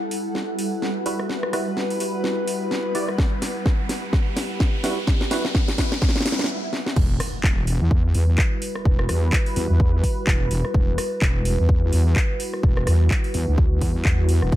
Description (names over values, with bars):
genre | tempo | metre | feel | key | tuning
bass house | 127 BPM | 4/4 | swing 58% on 16ths | E minor | A4 = 440 Hz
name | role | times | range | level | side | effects
sweeping resonant pad | sustained chords | 0.0-14.6 s | G3 to E5 | -29 LUFS | equal | chorus, sidechain pumping
riser, swell and impact | sound effects | 1.7-8.9 s | none | -33 LUFS | equal | none
granular cloud pad | texture | 0.0-6.5 s | G3 to F#5 | -30 LUFS | equal | built-in reverb, sidechain pumping
house drum kit | drums | 0.1-14.6 s | crash cymbal, handclaps, hi-hat, ride cymbal, rim click, snare drum | -27 LUFS | equal | overdrive
percussive organ stab | stabs | 1.1-5.5 s | G3 to D5 | -30 LUFS | right 2 dB | ensemble chorus, sidechain pumping, ping-pong delay
electronic kick drum | drums | 3.2-14.6 s | none | -20 LUFS | equal | none
wobble bass | bass | 7.0-14.6 s | E1 to E2 | -20 LUFS | equal | chorus, overdrive, sidechain pumping
room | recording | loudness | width
digital ambience | none | -19 LUFS | side -14 dB against mid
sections
0.0-7.0 A section; 7.0-14.6 B section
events
build-up 0.0-7.0; drum fill 0.0-6.5, 6.7; riser 1.7-6.5; swell 6.0-7.0; stop 6.5-7.0; drop 7.0-14.6; impact 7.0-8.9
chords
0.0 Emadd9